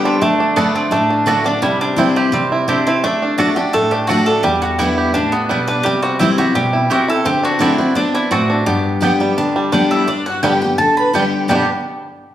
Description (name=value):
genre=bluegrass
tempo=170 BPM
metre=4/4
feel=straight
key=G major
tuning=A4 = 440 Hz
part: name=mandolin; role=melody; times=0.0-11.7 s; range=B3 to B5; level=-19 LUFS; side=equal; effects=none
part: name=picked steel-string acoustic guitar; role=accompaniment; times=0.0-11.6 s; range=E2 to G4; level=-18 LUFS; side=left 2 dB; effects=none
part: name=bluegrass banjo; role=arpeggios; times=0.0-11.7 s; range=G3 to G4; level=-19 LUFS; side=right 2 dB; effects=none
part: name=mandolin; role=stabs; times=0.6-11.6 s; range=A3 to A5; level=-23 LUFS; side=right 3 dB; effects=none
part: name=clear fiddle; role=second line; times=9.7-11.7 s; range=D4 to B4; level=-23 LUFS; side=left 2 dB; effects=none
room=wet large studio reverb, RT60 1.3 s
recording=heard from further back in the room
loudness=-13 LUFS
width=side -11 dB against mid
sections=0.0-10.1 A section; 10.1-11.5 B section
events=none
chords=0.2 D; 1.6 C; 3.0 D; 4.4 Em7; 5.8 C; 7.3 D7; 8.7 G